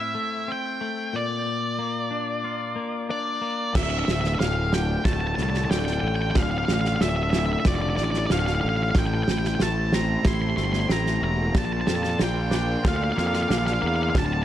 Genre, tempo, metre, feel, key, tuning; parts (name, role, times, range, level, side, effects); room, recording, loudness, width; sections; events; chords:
post-rock; 92 BPM; 4/4; straight; D minor; A4 = 440 Hz
octave-fuzz lead guitar; melody; 0.0-14.4 s; D5 to C6; -27 LUFS; equal; distortion, digital delay
twangy electric guitar; arpeggios; 0.0-14.4 s; D2 to F4; -30 LUFS; left 4 dB; digital delay
clear studio string section; sustained chords; 3.8-14.4 s; D3 to F5; -35 LUFS; right 2 dB
fuzz fingered electric bass; bass; 3.8-14.4 s; D1 to F2; -26 LUFS; equal; overdrive
loose indie drum kit; drums; 3.8-14.3 s; crash cymbal, kick drum, snare drum; -25 LUFS; right 1 dB
light reverb, small room ambience; dark, warm production; -22 LUFS; side -12 dB against mid
0.0-3.8 A section; 3.8-14.4 B section
0.0 Am7; 1.1 Bb; 3.8 Dmadd9; 9.0 Am7; 11.6 Bbadd9